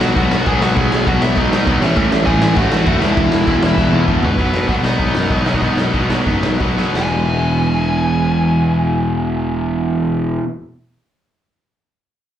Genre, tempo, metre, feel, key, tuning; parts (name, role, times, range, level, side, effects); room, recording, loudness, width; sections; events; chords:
punk rock; 168-199 BPM; 4/4; straight; E major; A4 = 440 Hz
dark smooth lead guitar; melody; 0.0-10.4 s; B3 to G#5; -22 LUFS; equal; overdrive, slapback echo
cranked stack guitar; riff; 0.0-10.5 s; E2 to B3; -21 LUFS; left 9 dB; overdrive, slapback echo
cranked stack guitar; riff; 0.0-10.5 s; E2 to B3; -22 LUFS; right 11 dB; overdrive, slapback echo
fuzz guitar; riff; 0.0-4.2 s; E2 to B3; -21 LUFS; left 1 dB; distortion, slapback echo
fuzz picked electric bass; bass; 0.0-10.4 s; E1 to B2; -18 LUFS; equal; overdrive
raw garage drum kit; drums; 0.0-7.0 s; crash cymbal, hi-hat, kick drum, snare drum, splash cymbal, toms; -19 LUFS; equal
little or no reverb; live gig heard through the venue's PA, club reverb; -13 LUFS; side -10 dB against mid
0.0-4.4 A section; 4.4-7.0 B section; 7.0-9.8 C section
drum fill 3.8-4.4, 6.8; slowing down 4.4-7.0
0.0 B; 1.8 A; 3.0 E5; 4.4 B; 7.0 E